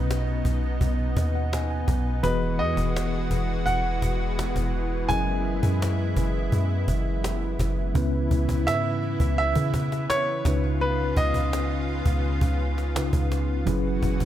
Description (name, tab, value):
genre	contemporary R&B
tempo	84 BPM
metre	4/4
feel	straight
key	unclear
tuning	A4 = 440 Hz
part	clear baby grand piano	melody	0.0-13.3 s	B4 to G#5	-28 LUFS	right 1 dB	ping-pong delay
part	mellow tine electric piano	accompaniment	0.0-14.2 s	B2 to G#5	-30 LUFS	equal	medium stereo tremolo
part	lush unison pad	sustained chords	0.0-14.2 s	B2 to F#4	-31 LUFS	equal	chorus
part	soft 808-style bass	bass	0.0-14.2 s	E1 to C#3	-26 LUFS	equal	none
part	cajon	drums	0.1-14.2 s	none	-31 LUFS	equal	none
room	studio reverb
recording	none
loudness	-22 LUFS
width	side -12 dB against mid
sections	0.0-8.0 A section; 8.0-14.2 B section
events	tine electric piano fill 0.8-2.2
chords	0.0 B; 2.2 Emaj9; 5.1 F#13; 8.0 C#m7; 10.5 C#7; 13.7 F#7sus4